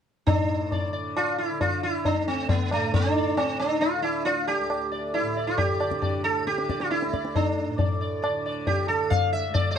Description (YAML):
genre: indian classical, Hindustani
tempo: 136 BPM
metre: 4/4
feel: straight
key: D raga bhimpalasi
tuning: A4 = 440 Hz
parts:
  - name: sitar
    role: melody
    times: 0.3-9.8 s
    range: A3 to F5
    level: -25 LUFS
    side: equal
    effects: none
  - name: tanpura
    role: drone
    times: 0.3-9.8 s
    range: D2 to D3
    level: -33 LUFS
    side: right 2 dB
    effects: none
  - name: tabla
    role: percussion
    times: 0.3-9.7 s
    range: none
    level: -27 LUFS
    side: left 2 dB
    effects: none
room: moderate small room reverb, RT60 0.5 s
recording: dark, warm production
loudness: -23 LUFS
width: side -8 dB against mid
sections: 0.3-9.8 A section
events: none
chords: none